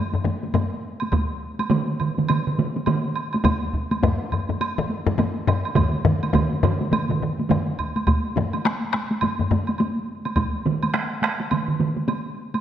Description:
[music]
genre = japanese traditional, taiko drum ensemble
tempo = 104 BPM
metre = 4/4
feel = swing 60% on 16ths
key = none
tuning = none
[part]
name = taiko ensemble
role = percussion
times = 0.1-9.7 s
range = none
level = -24 LUFS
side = left 3 dB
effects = none
[part]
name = taiko ensemble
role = percussion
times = 0.3-12.6 s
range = none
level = -26 LUFS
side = equal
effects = none
[part]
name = woodblock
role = percussion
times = 0.5-12.6 s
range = none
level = -30 LUFS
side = right 4 dB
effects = none
[part]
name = taiko ensemble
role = percussion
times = 1.1-10.5 s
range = none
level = -24 LUFS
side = equal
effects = none
[part]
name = taiko ensemble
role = percussion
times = 1.7-12.0 s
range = none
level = -24 LUFS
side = right 4 dB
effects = none
[sound]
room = wet scoring stage reverb, RT60 1.7 s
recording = none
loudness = -21 LUFS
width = side -10 dB against mid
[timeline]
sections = 0.0-8.1 A section; 8.1-12.6 B section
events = none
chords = none

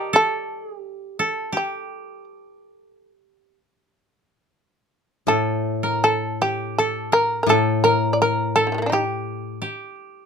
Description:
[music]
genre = japanese traditional, Japanese chamber music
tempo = 77-86 BPM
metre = 4/4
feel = rubato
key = unclear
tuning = A4 = 440 Hz
[part]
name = shamisen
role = melody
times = 0.0-10.0 s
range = D3 to D5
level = -20 LUFS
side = equal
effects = none
[part]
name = koto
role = second line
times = 0.0-10.3 s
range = G4 to G5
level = -25 LUFS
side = right 1 dB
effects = none
[part]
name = koto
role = accompaniment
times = 5.3-9.6 s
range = A2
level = -24 LUFS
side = left 4 dB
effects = none
[sound]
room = light reverb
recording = close, detailed microphones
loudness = -19 LUFS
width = side -6 dB against mid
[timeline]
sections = 0.0-10.3 A section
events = none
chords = none

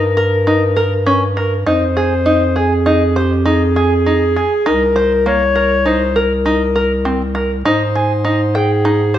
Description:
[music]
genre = contemporary instrumental, chamber music in an uneven meter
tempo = 100 BPM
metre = 5/4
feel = straight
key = F minor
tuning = A4 = 440 Hz
[part]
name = dark clarinet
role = melody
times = 0.0-9.2 s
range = G4 to Db5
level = -16 LUFS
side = left 1 dB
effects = none
[part]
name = open-back banjo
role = arpeggios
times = 0.0-9.2 s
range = Bb3 to G5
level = -17 LUFS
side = equal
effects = none
[part]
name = dark bass clarinet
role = bass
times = 0.0-9.2 s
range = C2 to Ab2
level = -17 LUFS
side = equal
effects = none
[sound]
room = light reverb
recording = none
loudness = -12 LUFS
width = side -11 dB against mid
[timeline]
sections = 0.0-9.2 A section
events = none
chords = 0.0 Eb/G (rootless); 1.7 Fm7; 4.7 Cm7; 7.7 Ab

